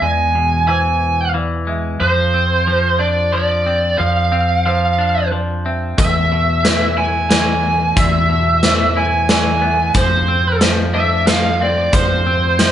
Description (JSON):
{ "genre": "post-rock", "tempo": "91 BPM", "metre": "3/4", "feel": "straight", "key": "unclear", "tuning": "A4 = 440 Hz", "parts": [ { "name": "bluesy overdriven lead guitar", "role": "melody", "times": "0.0-12.7 s", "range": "C5 to G#5", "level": "-16 LUFS", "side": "right 1 dB", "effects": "distortion" }, { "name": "felt-muted upright piano", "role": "arpeggios", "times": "0.0-12.7 s", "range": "B4 to E5", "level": "-29 LUFS", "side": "right 4 dB", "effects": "none" }, { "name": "semi-hollow electric guitar", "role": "arpeggios", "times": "0.0-12.7 s", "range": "E2 to E4", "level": "-23 LUFS", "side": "left 3 dB", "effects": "none" }, { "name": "growling fingered electric bass", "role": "bass", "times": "0.0-12.7 s", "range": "E2 to F2", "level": "-19 LUFS", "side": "equal", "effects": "overdrive" }, { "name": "big rock drum kit", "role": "drums", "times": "6.0-12.7 s", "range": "hi-hat, kick drum, snare drum", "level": "-17 LUFS", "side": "equal", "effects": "none" } ], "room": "moderate large studio reverb, RT60 0.9 s", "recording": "band playing live in one room, nothing above 11.0 kHz", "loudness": "-13 LUFS", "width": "side -10 dB against mid", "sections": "0.0-12.7 A section", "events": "none", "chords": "0.0 E; 2.0 Dm7/F; 6.0 E; 9.9 Dm7/F" }